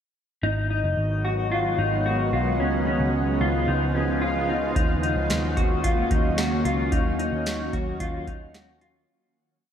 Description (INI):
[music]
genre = dream pop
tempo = 111 BPM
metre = 4/4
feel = straight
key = unclear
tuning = A4 = 439 Hz
[part]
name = shimmering ambient pad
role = sustained chords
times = 0.9-9.0 s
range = C#3 to F#4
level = -27 LUFS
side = equal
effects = chorus, built-in reverb, shimmer reverb
[part]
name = mellow electric guitar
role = arpeggios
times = 0.4-9.1 s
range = C#4 to F#4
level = -26 LUFS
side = left 2 dB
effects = wide subtle chorus, analog delay, shimmer reverb
[part]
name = vintage muted picked electric bass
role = bass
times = 0.4-9.0 s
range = F#1 to D#2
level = -27 LUFS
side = equal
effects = none
[part]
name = booming analog drum machine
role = drums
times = 4.8-8.9 s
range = hi-hat, kick drum, snare drum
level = -26 LUFS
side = equal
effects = overdrive
[sound]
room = wet lush hall reverb, RT60 1.8 s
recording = dreamy mix soaked in reverb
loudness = -22 LUFS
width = side -8 dB against mid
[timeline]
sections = 0.4-9.1 verse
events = fade-out 6.9-9.1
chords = 0.4 G#m7; 2.6 C#7; 4.8 D#m7